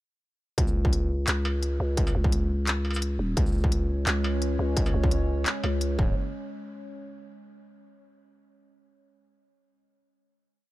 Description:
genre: half-time drum and bass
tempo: 172 BPM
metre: 4/4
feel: swing 54% on 16ths, half-time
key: unclear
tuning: A4 = 441 Hz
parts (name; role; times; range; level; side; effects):
- growling 808-style bass; bass; 0.6-6.1 s; C#1 to C#2; -26 LUFS; equal; none
- electronic kick drum; drums; 0.6-6.1 s; none; -25 LUFS; equal; distortion, small room ambience
- industrial drum kit; drums; 0.6-5.9 s; handclaps, hi-hat, shaker, struck metal; -31 LUFS; left 1 dB; small room ambience
- dark analog pad; sustained chords; 3.8-6.2 s; G#3 to C#5; -35 LUFS; right 1 dB; chorus, phaser, vintage 12-bit sampler grit, sidechain pumping
room: little or no reverb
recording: dark, warm production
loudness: -24 LUFS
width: side -17 dB against mid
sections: 0.6-6.2 drop; 6.2-7.6 final hit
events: drop 0.6-6.2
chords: 0.6 C#5; 6.2 N.C.

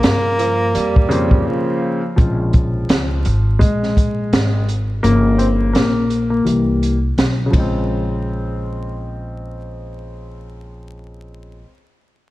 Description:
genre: hip hop, jazz-hop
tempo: 84 BPM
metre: 4/4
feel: swing 59% on 16ths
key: Bb dorian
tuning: A4 = 440 Hz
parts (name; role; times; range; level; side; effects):
- breathy tenor saxophone; melody; 0.0-1.8 s; Bb3; -20 LUFS; equal; none
- dark concert grand piano; accompaniment; 0.0-11.7 s; Db3 to Ab4; -20 LUFS; left 2 dB; none
- upright bass; bass; 0.0-11.6 s; G1 to G2; -21 LUFS; equal; none
- open jazz drum kit; drums; 0.0-7.7 s; hi-hat, kick drum, ride cymbal, snare drum; -17 LUFS; equal; none
- breathy tenor saxophone; second line; 0.4-2.2 s; F3 to G3; -23 LUFS; right 5 dB; none
room: light reverb, small room ambience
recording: dark, warm production, vinyl crackle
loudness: -14 LUFS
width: side -17 dB against mid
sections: 0.0-2.2 A section; 2.2-7.9 B section; 7.9-10.7 C section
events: break 1.5-2.2; grand piano solo 2.2-7.9; kick muted 5.0-7.9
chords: 0.0 Bbm9; 5.0 Gm7b5; 6.5 C7; 7.5 Bbm9

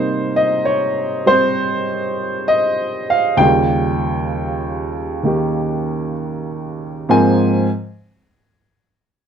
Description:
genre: solo jazz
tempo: 65 BPM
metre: 4/4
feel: swing 69% on 8ths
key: Ab major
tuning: A4 = 440 Hz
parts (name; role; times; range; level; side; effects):
- clear baby grand piano; solo; 0.0-7.7 s; Eb2 to Ab5; -16 LUFS; right 1 dB; none
room: moderate studio ambience, RT60 0.5 s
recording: none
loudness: -15 LUFS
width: side -8 dB against mid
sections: 0.0-7.1 A section; 7.1-9.3 B section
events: none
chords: 0.0 Cm7; 3.4 Eb9; 7.1 Ab69

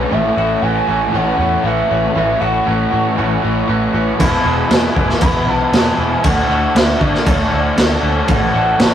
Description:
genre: rock, shoegaze and dream pop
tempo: 117 BPM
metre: 4/4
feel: straight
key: unclear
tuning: A4 = 444 Hz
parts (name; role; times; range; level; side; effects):
- pure breathy sine lead; melody; 0.0-8.9 s; B4 to B5; -19 LUFS; right 1 dB; chorus, tape echo
- analog string pad; sustained chords; 0.0-8.9 s; G#3 to C#6; -30 LUFS; equal; none
- direct-recorded clean electric guitar; arpeggios; 0.0-8.9 s; E3 to G#4; -26 LUFS; left 6 dB; none
- crunchy overdriven guitar; riff; 0.0-8.9 s; E2 to D4; -22 LUFS; equal; none
- thick fuzz guitar; riff; 0.0-8.9 s; E2 to D4; -24 LUFS; left 4 dB; distortion
- twangy electric guitar; riff; 0.0-8.9 s; E2 to F#4; -22 LUFS; right 5 dB; none
- vintage muted picked electric bass; bass; 0.0-8.9 s; E1 to D3; -21 LUFS; equal; none
- raw garage drum kit; drums; 4.2-8.9 s; crash cymbal, kick drum, snare drum; -15 LUFS; equal; none
room: moderate studio reverb, RT60 0.6 s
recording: rough rehearsal-room recording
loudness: -12 LUFS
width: side -10 dB against mid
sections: 0.0-8.9 A section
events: none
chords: 0.1 A6; 4.2 E; 6.2 Dmaj7; 8.3 A6

